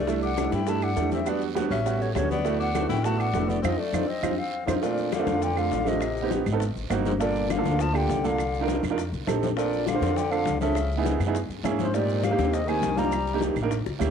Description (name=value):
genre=Afro-Cuban jazz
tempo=202 BPM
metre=4/4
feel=straight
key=Bb major from 4.8 s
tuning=A4 = 443 Hz
part: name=breathy hollow jazz flute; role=melody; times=0.0-13.4 s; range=C5 to Bb5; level=-31 LUFS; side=left 2 dB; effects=cassette tape
part: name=bright tenor saxophone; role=second line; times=0.0-13.4 s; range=Ab2 to F#4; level=-33 LUFS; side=left 10 dB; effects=cassette tape
part: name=upright bass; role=bass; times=0.0-14.1 s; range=F1 to Ab2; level=-29 LUFS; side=left 1 dB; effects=none
part: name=clear baby grand piano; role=accompaniment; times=0.1-14.1 s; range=G3 to C5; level=-27 LUFS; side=right 9 dB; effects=cassette tape
part: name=bongos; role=percussion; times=0.1-14.1 s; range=none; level=-39 LUFS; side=left 12 dB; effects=none
part: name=congas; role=percussion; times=0.1-14.1 s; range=none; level=-32 LUFS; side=left 11 dB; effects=none
part: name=guiro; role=percussion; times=0.1-14.1 s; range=none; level=-45 LUFS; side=right 13 dB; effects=none
part: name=maracas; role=percussion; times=0.1-14.1 s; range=none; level=-48 LUFS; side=left 15 dB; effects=none
part: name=claves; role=percussion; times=0.4-14.1 s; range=none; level=-39 LUFS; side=right 12 dB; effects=none
room=light reverb, studio reverb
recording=home recording on cassette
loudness=-23 LUFS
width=side -7 dB against mid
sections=0.0-4.8 A section; 4.8-14.1 B section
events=band accent 3.6-4.8; drum fill 4.4-4.8, 13.9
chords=0.1 C69; 1.3 Em9; 1.9 A13; 2.5 D69; 3.6 F7; 4.8 Bbmaj9; 6.0 Am7b5; 6.6 Ab9; 7.2 Gm9; 8.4 Cm11; 9.0 F7; 9.6 Bbmaj9; 10.8 Dbm7; 11.3 Gb9; 11.9 Abmaj9; 13.1 Cm9